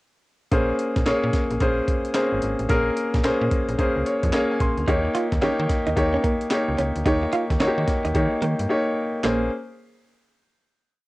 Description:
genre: R&B, new jack swing.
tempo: 110 BPM.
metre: 4/4.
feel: swing 64% on 16ths.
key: Bb dorian.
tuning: A4 = 440 Hz.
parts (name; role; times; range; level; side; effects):
clear concert grand piano; accompaniment; 0.5-9.5 s; Bb3 to C6; -22 LUFS; left 1 dB; cassette tape, plate reverb.
slap-like FM bass; bass; 0.5-9.5 s; Ab1 to Eb3; -27 LUFS; equal; none.
breakbeat sampler-style drum kit; drums; 0.5-9.4 s; handclaps, hi-hat, kick drum, snare drum; -25 LUFS; equal; vintage 12-bit sampler grit, cassette tape.
direct-recorded clean electric guitar; riff; 4.9-9.4 s; Bb3 to F4; -26 LUFS; right 3 dB; lush chorus, cassette tape.
room: light reverb.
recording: home recording on cassette.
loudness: -20 LUFS.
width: side -20 dB against mid.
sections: 0.5-9.2 verse; 9.2-11.1 final chord.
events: grand piano fill 3.8-4.9; silent gap 8.7-9.2.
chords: 0.5 Bbm9; 4.9 Eb7; 9.2 Bbm9.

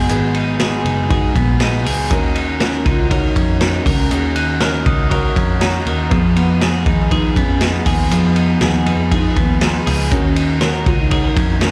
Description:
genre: jangly indie pop.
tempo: 120 BPM.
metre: 4/4.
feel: straight.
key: Eb minor.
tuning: A4 = 440 Hz.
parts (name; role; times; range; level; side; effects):
warbly nostalgic lead; melody; 0.0-11.7 s; Cb4 to F4; -25 LUFS; equal; chorus, slapback echo.
raw garage guitar; accompaniment; 0.0-11.7 s; Ab2 to Cb5; -30 LUFS; equal; overdrive, slapback echo.
warm upright piano; accompaniment; 0.0-11.7 s; Cb4 to Db5; -29 LUFS; equal; slapback echo.
twelve-string electric guitar; arpeggios; 0.0-11.7 s; Ab2 to Bb4; -23 LUFS; equal; spring reverb, slapback echo.
vintage muted picked electric bass; bass; 0.0-11.7 s; Gb1 to F2; -22 LUFS; equal; none.
vintage drum kit; drums; 0.1-11.7 s; hi-hat, kick drum, ride cymbal, snare drum; -21 LUFS; equal; none.
glockenspiel with soft plastic mallets; second line; 4.4-6.0 s; Bb5 to Gb6; -30 LUFS; equal; slapback echo.
room: light reverb.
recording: live gig heard through the venue's PA, club reverb.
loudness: -16 LUFS.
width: mono.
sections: 0.0-11.7 A section.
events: none.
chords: 0.0 Abm7; 2.1 Ebm7; 6.1 Fm7b5; 10.1 Ebm7.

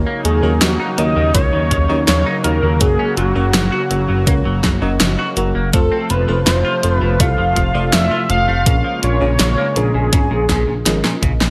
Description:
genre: synthwave.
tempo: 82 BPM.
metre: 4/4.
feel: straight.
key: Eb minor.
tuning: A4 = 444 Hz.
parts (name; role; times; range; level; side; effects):
warm analog pad; sustained chords; 0.0-11.5 s; C3 to Gb4; -26 LUFS; equal; chorus, sidechain pumping.
FM electric piano with soft pad layer; stabs; 0.0-11.5 s; A3 to Gb5; -27 LUFS; equal; chorus, phaser.
chorused synth bass; bass; 0.0-11.5 s; F1 to Eb2; -20 LUFS; equal; tube saturation.
clean electric guitar; riff; 0.1-11.5 s; Bb2 to Gb4; -28 LUFS; equal; lush chorus, tape echo.
unison lead; melody; 0.2-11.2 s; Gb4 to F5; -22 LUFS; equal; digital delay.
pop drum kit; drums; 0.2-11.5 s; hi-hat, snare drum; -20 LUFS; equal; gated reverb.
electronic kick drum; drums; 1.3-11.4 s; none; -20 LUFS; equal; none.
room: light reverb, digital ambience.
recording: lossy compression artefacts.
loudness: -16 LUFS.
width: mono.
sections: 0.0-11.5 A section.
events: drum fill 10.9-11.5.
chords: 0.0 Ebm7; 2.8 Gb; 5.7 F; 8.7 Bbm7.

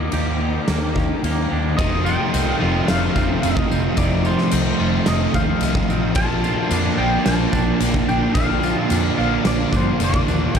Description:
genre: rock, shoegaze and dream pop.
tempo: 110 BPM.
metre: 4/4.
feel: straight.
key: F mixolydian.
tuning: A4 = 440 Hz.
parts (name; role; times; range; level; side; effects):
twangy electric guitar; melody; 0.0-10.6 s; C5 to A5; -26 LUFS; left 1 dB; analog chorus, diffuse ambient delay.
twangy electric guitar; arpeggios; 0.0-10.6 s; Eb3 to G4; -30 LUFS; right 5 dB; lush chorus, diffuse ambient delay.
overdriven electric guitar; riff; 0.0-10.6 s; F2 to G4; -25 LUFS; right 7 dB; reverse reverb.
thick fuzz guitar; riff; 0.0-10.6 s; F2 to Eb4; -25 LUFS; left 6 dB; distortion, analog chorus.
vintage muted fingered electric bass; bass; 0.0-10.6 s; F1 to G2; -24 LUFS; equal; none.
huge arena drum kit; drums; 0.1-10.6 s; crash cymbal, kick drum, snare drum; -23 LUFS; equal; none.
overdriven electric guitar; riff; 1.8-10.6 s; F2 to Eb4; -26 LUFS; right 1 dB; none.
tambourine; percussion; 1.8-10.6 s; none; -39 LUFS; left 12 dB; none.
room: wet huge ambient reverb, RT60 7.4 s.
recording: dreamy mix soaked in reverb.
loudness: -17 LUFS.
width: side -7 dB against mid.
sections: 0.0-1.8 A section; 1.8-10.6 B section.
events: none.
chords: 0.0 Ebmaj7; 1.8 F7; 6.2 Bbmaj7.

